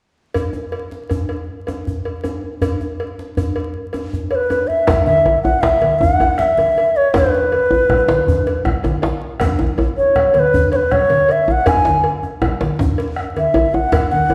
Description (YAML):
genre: west african traditional, West African drum ensemble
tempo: 106 BPM (dotted quarters)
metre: 12/8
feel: straight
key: E major pentatonic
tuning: A4 = 440 Hz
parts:
  - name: cowbell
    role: percussion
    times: 0.3-14.3 s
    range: none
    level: -28 LUFS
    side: equal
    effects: none
  - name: djembe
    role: percussion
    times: 0.4-14.3 s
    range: none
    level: -26 LUFS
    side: equal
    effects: none
  - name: bansuri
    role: melody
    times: 4.3-14.3 s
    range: B4 to G#5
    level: -16 LUFS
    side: equal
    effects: none
  - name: bombo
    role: percussion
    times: 4.9-14.1 s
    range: none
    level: -27 LUFS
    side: equal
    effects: none
  - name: congas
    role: percussion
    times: 4.9-14.3 s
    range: none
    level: -26 LUFS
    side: equal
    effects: none
  - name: djembe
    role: percussion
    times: 4.9-14.3 s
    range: none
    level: -23 LUFS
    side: equal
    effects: none
room: wet recital hall reverb, RT60 1.5 s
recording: recorded in a church or concert hall, vinyl crackle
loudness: -17 LUFS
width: mono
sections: 0.4-4.9 A section; 4.9-14.3 B section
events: none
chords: none